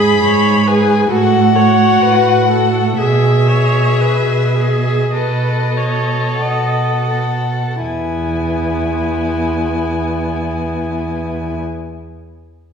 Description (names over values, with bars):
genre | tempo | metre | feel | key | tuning
classical, slow romantic movement for string quartet | 41-72 BPM | 4/4 | rubato | E major | A4 = 440 Hz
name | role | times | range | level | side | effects
muted violin | melody | 0.0-11.6 s | D#5 to B5 | -19 LUFS | left 6 dB | none
muted violin | second line | 0.0-11.6 s | E4 to A4 | -19 LUFS | left 2 dB | none
muted viola | accompaniment | 0.0-11.6 s | B3 to D#5 | -21 LUFS | right 3 dB | none
muted cello | bass | 0.0-11.6 s | E2 to B2 | -16 LUFS | right 3 dB | none
room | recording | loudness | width
wet recital hall reverb, RT60 1.6 s | heard from further back in the room | -13 LUFS | side -6 dB against mid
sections
0.0-7.8 A section; 7.8-12.7 B section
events
slowing down 0.0-7.8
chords
0.0 G#m; 1.1 F#m/A; 3.0 E/B; 5.1 B7; 7.8 E